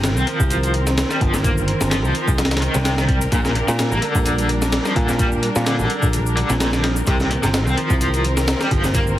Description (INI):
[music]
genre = breakbeat, breaks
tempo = 128 BPM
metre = 4/4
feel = swing 54% on 16ths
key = C minor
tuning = A4 = 440 Hz
[part]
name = muted studio string section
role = sustained chords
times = 0.0-9.2 s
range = Eb3 to Bb4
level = -25 LUFS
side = right 1 dB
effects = vintage 12-bit sampler grit, sidechain pumping
[part]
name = picked electric bass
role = bass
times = 0.0-9.2 s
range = G1 to Bb2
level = -21 LUFS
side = equal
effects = none
[part]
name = breakbeat sampler-style drum kit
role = drums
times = 0.0-9.1 s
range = hi-hat, kick drum, snare drum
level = -21 LUFS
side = equal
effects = none
[part]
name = shaker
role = drums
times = 0.0-9.2 s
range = none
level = -33 LUFS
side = left 2 dB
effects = none
[part]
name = cranked stack guitar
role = riff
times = 0.2-9.0 s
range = G2 to C4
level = -23 LUFS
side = equal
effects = overdrive, tremolo, low-pass filter, ping-pong delay
[sound]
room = light reverb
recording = heavily compressed radio sound, multiband compression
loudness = -16 LUFS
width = side -13 dB against mid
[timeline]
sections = 0.0-9.2 A section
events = none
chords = 0.0 Cm7; 3.3 Bb6; 7.1 Cm7